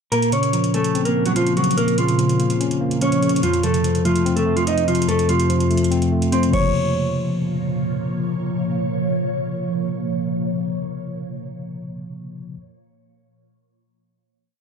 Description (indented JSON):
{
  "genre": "hip hop, trap",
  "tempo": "145 BPM",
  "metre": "4/4",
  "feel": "half-time",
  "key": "Bb harmonic minor",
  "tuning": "A4 = 440 Hz",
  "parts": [
    { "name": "mellow electric guitar", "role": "melody", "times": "0.1-7.9 s", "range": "F3 to Eb5", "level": "-20 LUFS", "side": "equal", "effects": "low-pass filter, digital delay" },
    { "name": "mellow tine electric piano", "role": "accompaniment", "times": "0.1-12.6 s", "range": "F2 to Db4", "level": "-22 LUFS", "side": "left 1 dB", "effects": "auto-pan, low-pass filter" },
    { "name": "ethereal airy pad", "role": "sustained chords", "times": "1.2-10.8 s", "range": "F2 to Db5", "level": "-25 LUFS", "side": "right 1 dB", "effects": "ensemble chorus, built-in reverb, phaser" },
    { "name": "booming analog drum machine", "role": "drums", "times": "0.1-6.7 s", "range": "crash cymbal, hi-hat, kick drum", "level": "-30 LUFS", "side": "right 1 dB", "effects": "vintage 12-bit sampler grit" }
  ],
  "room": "light reverb, digital ambience",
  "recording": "none",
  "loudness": "-18 LUFS",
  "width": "side -6 dB against mid",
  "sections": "0.1-6.7 breakdown; 6.7-10.1 final hit",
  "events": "kick muted 5.9-6.7",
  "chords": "0.1 Bbmadd9; 3.4 F; 6.5 Bbmadd9"
}